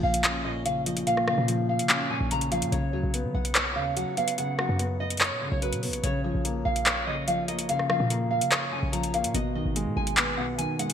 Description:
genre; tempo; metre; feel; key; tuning
hip hop, drill; 145 BPM; 4/4; half-time; Bb phrygian; A4 = 437 Hz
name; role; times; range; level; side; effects
nylon-string guitar; melody; 0.0-10.9 s; B4 to Bb5; -30 LUFS; right 1 dB; lush chorus, low-pass filter
dark baby grand piano; accompaniment; 0.0-10.9 s; Bb2 to C#5; -30 LUFS; left 1 dB; low-pass filter
short 808-style bass; bass; 0.0-10.7 s; Ab1 to Eb3; -31 LUFS; equal; none
drill drum kit; drums; 0.1-10.9 s; handclaps, hi-hat, rim click; -27 LUFS; equal; gated reverb
room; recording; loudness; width
moderate plate reverb, RT60 2.1 s; bright 1980s-style digital production; -24 LUFS; side -8 dB against mid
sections
0.0-10.9 A section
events
none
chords
0.0 Bbm; 2.7 Bsus2; 6.0 Bbm; 9.3 Abm

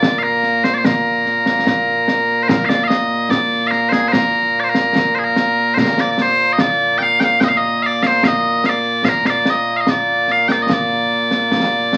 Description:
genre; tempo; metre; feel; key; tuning
scottish traditional, Scottish pipe music; 73 BPM; 2/4; straight; Bb major; A4 = 440 Hz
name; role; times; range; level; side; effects
loud bright bagpipes; melody; 0.0-12.0 s; Bb2 to G5; -17 LUFS; equal; none
concert snare drum and concert bass drum; drums; 0.0-12.0 s; none; -21 LUFS; equal; none
room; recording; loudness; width
wet studio reverb, RT60 0.5 s; very old 78 rpm record, vinyl crackle; -16 LUFS; mono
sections
0.0-2.5 A section; 2.5-12.0 A section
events
none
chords
none

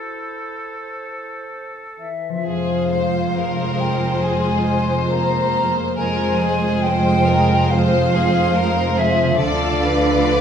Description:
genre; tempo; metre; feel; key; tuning
cinematic, emotional film score for orchestra; 63-72 BPM; 4/4; rubato; F harmonic minor; A4 = 440 Hz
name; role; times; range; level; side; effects
clear oboe; second line; 0.0-2.1 s; A4; -30 LUFS; right 1 dB; none
dark clarinet; second line; 0.0-1.5 s; E4; -40 LUFS; left 1 dB; none
mellow hollow silver concert flute; second line; 0.0-10.4 s; C5 to Bb5; -23 LUFS; left 1 dB; none
mellow French horn section; sustained chords; 2.0-10.4 s; E3 to Bb3; -26 LUFS; left 2 dB; none
concert harp; arpeggios; 2.3-10.4 s; D3 to A4; -28 LUFS; left 4 dB; none
warm symphonic violin section; melody; 2.5-10.4 s; C5 to D5; -24 LUFS; left 3 dB; none
warm chamber violin section; second line; 2.5-10.4 s; Ab4 to C5; -25 LUFS; left 2 dB; none
warm studio viola section; accompaniment; 2.5-10.4 s; Ab3 to F4; -26 LUFS; right 1 dB; none
dark symphonic cello section; bass; 2.5-10.4 s; F2 to D3; -23 LUFS; right 3 dB; none
warm studio double bass section; bass; 2.5-10.4 s; F1 to D2; -24 LUFS; right 3 dB; none
room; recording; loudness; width
wet scoring stage reverb, RT60 1.7 s; small room ambience; -16 LUFS; side -8 dB against mid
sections
0.0-2.5 A section; 2.5-10.4 A section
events
none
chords
0.0 Am; 2.5 Fm; 9.4 Dm

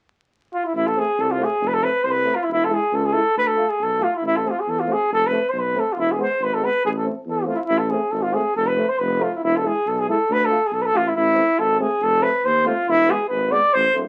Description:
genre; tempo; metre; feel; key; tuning
balkan folk, Balkan brass band; 138 BPM; 2/4; straight; A harmonic minor; A4 = 442 Hz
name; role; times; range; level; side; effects
dark trumpet; melody; 0.5-13.9 s; E4 to D5; -21 LUFS; equal; none
mellow tuba; bass; 0.7-14.1 s; D1 to E2; -30 LUFS; equal; none
warm euphonium; accompaniment; 1.0-14.0 s; G#3 to A3; -32 LUFS; equal; none
warm trombone; accompaniment; 1.0-14.0 s; B3 to F4; -32 LUFS; equal; none
room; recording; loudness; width
moderate club reverb, RT60 0.5 s; very old 78 rpm record, vinyl crackle; -20 LUFS; mono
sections
0.7-7.7 A section; 7.7-14.1 A section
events
none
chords
0.0 N.C.; 0.7 Am; 1.6 F; 2.5 E; 3.4 Dm; 4.2 Am; 5.1 F; 6.0 E; 6.8 Am; 8.6 F; 9.4 E; 10.3 Dm; 11.1 Am; 12.0 F; 12.9 E

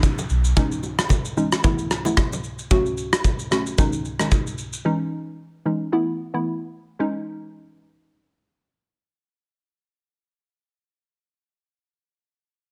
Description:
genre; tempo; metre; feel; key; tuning
afrobeats; 112 BPM; 4/4; swing 55% on 16ths; C# minor; A4 = 440 Hz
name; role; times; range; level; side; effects
hollow square pluck; accompaniment; 0.0-11.4 s; D#3 to F#4; -26 LUFS; equal; chorus
big rock drum kit; drums; 0.0-4.8 s; kick drum, rim click, shaker; -24 LUFS; equal; vintage 12-bit sampler grit
bongos and congas; percussion; 0.0-2.4 s; none; -32 LUFS; equal; none
downlifter; sound effects; 0.0-2.7 s; none; -46 LUFS; equal; none
sub bass with octave; bass; 0.3-0.5 s; B1; -20 LUFS; equal; none
room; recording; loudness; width
light reverb; none; -23 LUFS; mono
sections
0.0-7.0 A section; 7.0-11.3 B section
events
none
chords
0.0 G#sus4; 0.6 C#madd9; 1.6 Asus2; 2.7 F#m; 3.8 G#sus4; 4.9 C#madd9; 5.9 Asus2; 7.0 C#madd9

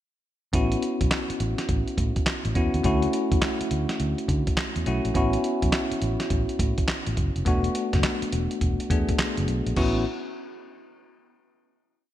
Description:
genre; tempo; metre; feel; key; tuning
R&B, new jack swing; 104 BPM; 4/4; swing 64% on 16ths; A major; A4 = 440 Hz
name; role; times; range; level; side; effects
bell-like tine electric piano; accompaniment; 0.5-10.0 s; A3 to G#4; -27 LUFS; left 1 dB; fast stereo tremolo
fingered electric bass; bass; 0.5-10.0 s; E1 to D3; -27 LUFS; equal; none
dusty soul sampler-style drum kit; drums; 0.5-9.9 s; crash cymbal, handclaps, hi-hat, kick drum, snare drum; -26 LUFS; equal; none
room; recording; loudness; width
light reverb, digital ambience; bright 1980s-style digital production; -22 LUFS; side -12 dB against mid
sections
0.5-9.8 verse; 9.8-12.1 final chord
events
none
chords
0.5 A6; 2.8 Dmaj7; 5.2 A6; 7.5 E9sus4; 9.8 A6

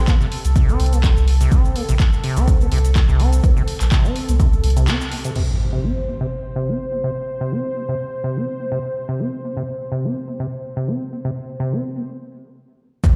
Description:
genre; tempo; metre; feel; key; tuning
acid house; 125 BPM; 4/4; swing 54% on 16ths; unclear; A4 = 440 Hz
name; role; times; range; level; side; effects
warm analog pad; sustained chords; 0.0-13.2 s; A4 to C5; -32 LUFS; equal; chorus, tremolo, sidechain pumping
acid bass, saw; riff; 0.0-13.1 s; C3 to C4; -27 LUFS; equal; tube saturation, sidechain pumping, analog delay
warm sub bass; bass; 0.0-4.9, 13.0-13.1 s; Bb1 to C2; -18 LUFS; equal; sidechain pumping
electronic kick drum; drums; 0.1-4.5, 13.0-13.1 s; none; -18 LUFS; equal; overdrive
punchy analog drum machine; drums; 0.1-5.5, 13.0-13.1 s; crash cymbal, handclaps, hi-hat, shaker; -31 LUFS; equal; overdrive
impact; sound effects; 5.4-7.3, 13.0-13.2 s; none; -26 LUFS; equal; none
room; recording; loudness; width
light reverb; played on a big sound system in a bare room, stone room reverb; -19 LUFS; mono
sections
0.0-5.4 A section; 5.4-13.0 B section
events
break 4.9-5.4, 12.1-13.0; band accent 4.9; impact 5.4-7.3; filter sweep on acid bass 5.4-13.0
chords
0.0 C5; 5.4 N.C.

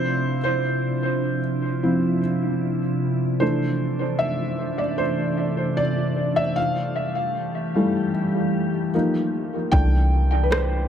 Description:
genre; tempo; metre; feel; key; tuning
contemporary R&B; 76 BPM; 4/4; straight; C major; A4 = 439 Hz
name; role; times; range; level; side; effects
felt-muted upright piano; accompaniment; 0.0-10.9 s; E3 to G5; -23 LUFS; equal; analog delay
glassy FM pad; sustained chords; 0.0-10.9 s; C3 to G4; -25 LUFS; equal; ensemble chorus, built-in reverb, sidechain pumping
clean 808-style bass; bass; 9.7-10.9 s; C2; -19 LUFS; equal; none
smooth R&B drum kit; drums; 9.7-10.7 s; kick drum, rim click; -22 LUFS; equal; overdrive
room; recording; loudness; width
moderate spring reverb, RT60 2.4 s; echo-heavy mix; -20 LUFS; side -9 dB against mid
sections
0.0-10.9 A section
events
felt piano solo 0.0-10.9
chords
0.0 Dm9; 3.4 C69; 6.6 Fmaj9; 8.9 Db69; 9.7 C69

